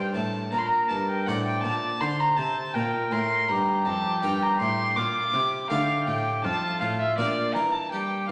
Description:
classical, baroque-style sonata movement with continuo; 81 BPM; 4/4; straight; A4 = 439 Hz
dark violin; melody; 0.0-8.3 s; D5 to D6; -28 LUFS; equal
warm oboe; second line; 0.0-8.3 s; F4 to D5; -33 LUFS; equal
harpsichord; accompaniment; 0.0-8.3 s; F2 to C5; -34 LUFS; equal
dark cello; bass; 0.0-8.3 s; F2 to G3; -34 LUFS; equal
wet recital hall reverb, RT60 1.4 s; -26 LUFS; mono
0.0-8.3 A section
0.0 Gm; 1.3 D5/A; 2.7 Gm; 5.7 Dm; 7.2 Gm/Bb
0.53 1.27 2.01 | 2.75 3.49 4.23 4.97 | 5.71 6.45 7.18 7.92

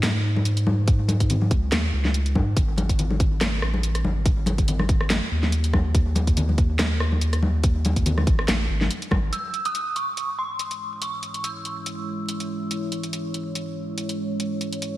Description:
deep dubstep; 142 BPM; 4/4; swing 55% on 16ths, half-time; C# harmonic minor; A4 = 440 Hz
saturated sub bass; bass; 0.0-9.3 s; G#1 to G#2; -22 LUFS; equal
garage drum kit; drums; 0.0-14.9 s; hi-hat, rim click, snare drum; -27 LUFS; equal
congas; percussion; 0.0-9.2 s; -28 LUFS; left 2 dB; dub echo
electronic kick drum; drums; 0.9-9.2 s; -21 LUFS; equal
dark detuned synth bell; melody; 9.3-12.5 s; B#5 to E6; -28 LUFS; right 1 dB; chorus, phaser, dub echo
deep dark ambient pad; sustained chords; 10.8-15.0 s; G#3 to C#5; -29 LUFS; right 1 dB; chorus, built-in reverb
light reverb, digital ambience; vinyl crackle; -21 LUFS; side -15 dB against mid
0.0-9.3 A section; 9.3-15.0 B section
filter sweep on ambient pad 9.3-15.0
0.0 C#5; 2.6 G#5; 9.3 C#m
0.03 0.45 | 0.88 1.30 1.72 2.14 | 2.57 2.99 3.41 3.83 | 4.26 4.68 5.10 5.52 | 5.95 6.37 6.79 7.21 | 7.64 8.06 8.48 8.90 | 9.33 9.75 10.17 10.59 | 11.02 11.44 11.86 12.28 | 12.71 13.13 13.55 13.97 | 14.40 14.82

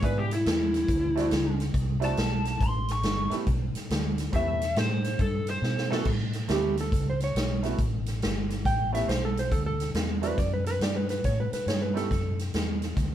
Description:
electric blues shuffle; 139 BPM; 4/4; swing 65% on 8ths; A mixolydian; A4 = 441 Hz
lead guitar through a small cranked amp; melody; 0.0-6.1 s; E4 to C#6; -29 LUFS; left 1 dB; overdrive
bright upright piano; accompaniment; 0.0-12.1 s; G#3 to G#4; -32 LUFS; right 6 dB
vintage muted fingered electric bass; bass; 0.0-13.1 s; G1 to B2; -30 LUFS; equal
swinging big-band drum kit; drums; 0.0-13.1 s; crash cymbal, hi-hat, kick drum, snare drum; -29 LUFS; equal
clean lap steel guitar; second line; 6.5-12.4 s; G4 to G5; -30 LUFS; right 2 dB
moderate studio ambience, RT60 0.5 s; band playing live in one room; -25 LUFS; side -11 dB against mid
0.0-6.1 A section; 6.1-13.1 A section
lead electric guitar solo 0.0-6.1; drum fill 5.6-6.1; electric slide guitar solo 6.1-13.1
0.0 E7; 0.9 D9; 2.6 A9; 9.5 Dadd9; 11.2 A7sus2
0.02 0.45 | 0.88 1.31 1.75 2.18 | 2.61 3.04 3.47 3.90 | 4.33 4.76 5.20 5.63 | 6.06 6.49 6.92 7.36 | 7.79 8.22 8.65 9.08 | 9.52 9.95 10.38 10.81 | 11.24 11.67 12.10 12.54 | 12.97

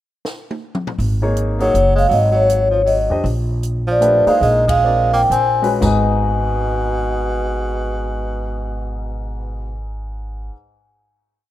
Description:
modal jazz; 112-161 BPM; 3/4; swing 63% on 8ths; G# dorian; A4 = 441 Hz
compact cocktail drum kit; drums; 0.2-6.0 s; hi-hat, kick drum, ride cymbal, snare drum, splash cymbal, toms; -28 LUFS; equal
upright bass; bass; 1.0-10.5 s; F#1 to E#2; -20 LUFS; equal
warm baby grand piano; accompaniment; 1.2-10.5 s; G#2 to D#5; -23 LUFS; left 2 dB
vibraphone with soft mallets; melody; 1.6-10.5 s; C#5 to G#5; -17 LUFS; left 1 dB
clear tenor saxophone; second line; 1.6-9.8 s; B2 to B#3; -24 LUFS; right 3 dB
light reverb, studio ambience; rough home demo mix; -15 LUFS; side -13 dB against mid
0.0-1.0 pickup bar; 1.0-5.8 A section; 5.8-9.0 final chord
drum fill 0.3-1.0; slowing down 3.2-5.8; band accent 4.6
0.0 N.C.; 1.0 G#9sus4; 3.2 A#9sus4; 5.8 G#m
0.25 0.62 | 1.00 1.37 1.75 | 2.12 2.50 2.87 | 3.25 3.62 4.01 | 4.42 4.85 5.31 | 5.82 6.36 6.89 | 7.42 7.96 8.49

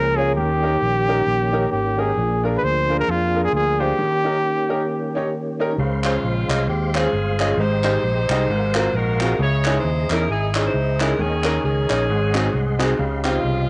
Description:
uptempo gospel; 133 BPM; 4/4; swing 58% on 8ths; A4 = 439 Hz
breathy trumpet; melody; 0.0-5.3 s; F4 to C5; -23 LUFS; equal; analog delay
tonewheel organ; sustained chords; 0.0-13.7 s; Eb3 to C6; -30 LUFS; equal; fast rotary speaker, overdrive, chorus vibrato, cassette tape
fingered electric bass; bass; 0.0-13.7 s; G1 to F2; -25 LUFS; equal
bright baby grand piano; accompaniment; 0.2-13.7 s; Ab2 to Eb5; -26 LUFS; equal; cassette tape
clear saxophone section; melody; 6.0-13.7 s; Ab3 to Db5; -26 LUFS; equal
group handclap; percussion; 6.0-13.3 s; -30 LUFS; equal
light reverb; home recording on cassette, nothing above 10.3 kHz; -20 LUFS; mono
0.0-5.8 A section; 5.8-13.7 B section
break 4.0-5.8
0.4 Eb7; 2.2 Bb7; 4.0 Eb7; 5.8 Dbmaj7; 7.6 Abmaj7; 8.5 Ab13; 9.4 Dbmadd9; 11.2 Eb7sus4; 12.1 Ab7; 13.0 Dbmaj9#11
| 0.37 0.82 1.27 1.72 | 2.18 2.63 3.08 3.53 | 3.98 4.43 4.88 5.34 | 5.79 6.24 6.69 7.14 | 7.59 8.04 8.49 8.94 | 9.39 9.84 10.29 10.74 | 11.19 11.64 12.09 12.54 | 12.99 13.45

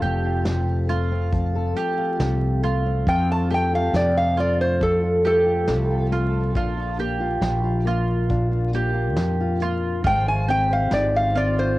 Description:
acoustic folk duo or small band; 69 BPM; 4/4; straight; F major; A4 = 440 Hz
metal-body resonator slide guitar; melody; 0.0-11.8 s; A4 to A5; -22 LUFS; equal; cassette tape
fingerpicked steel-string acoustic guitar; accompaniment; 0.0-11.8 s; Bb2 to C5; -27 LUFS; left 4 dB; plate reverb
mandolin; arpeggios; 0.0-11.8 s; F4 to G4; -28 LUFS; right 5 dB
mellow fretless electric bass; bass; 0.0-11.8 s; F1 to F2; -23 LUFS; equal
soft brush drum kit; drums; 0.0-11.6 s; hi-hat, kick drum, snare drum; -28 LUFS; equal; vintage 12-bit sampler grit, cassette tape
light reverb; home recording on cassette, vinyl crackle; -19 LUFS; side -17 dB against mid
0.0-3.1 A section; 3.1-11.8 B section
resonator guitar played with a steel bar solo 3.1-11.8
0.0 F; 6.6 Bb; 10.1 Ab6
0.46 1.33 2.21 | 3.08 3.95 4.82 5.69 | 6.57 7.44 8.31 9.18 | 10.05 10.93

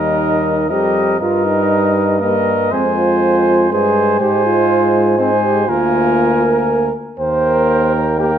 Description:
classical, brass quintet; 120 BPM; 3/4; rubato; Eb major; A4 = 441 Hz
mellow cornet; melody; 0.0-8.4 s; Eb5 to Ab5; -20 LUFS; left 7 dB
mellow trumpet; second line; 0.0-8.4 s; Bb4 to C5; -20 LUFS; right 7 dB
mellow trombone; accompaniment; 0.0-8.3 s; Bb3 to C5; -17 LUFS; right 3 dB
warm French horn; accompaniment; 0.0-8.4 s; G3 to Bb3; -21 LUFS; left 4 dB
clear bass trombone; bass; 0.0-8.4 s; D2 to Ab2; -19 LUFS; right 1 dB
wet recital hall reverb, RT60 1.5 s; -12 LUFS; side -9 dB against mid
0.0-8.4 A section
0.0 Eb; 1.2 Eb/G; 2.7 Fm; 4.2 Fm/Ab; 5.7 Bb7/D; 7.2 Eb
0.19 0.69 | 1.19 1.70 2.20 | 2.71 3.22 3.71 | 4.21 4.70 5.20 | 5.69 6.20 6.70 | 7.20 7.70 8.20

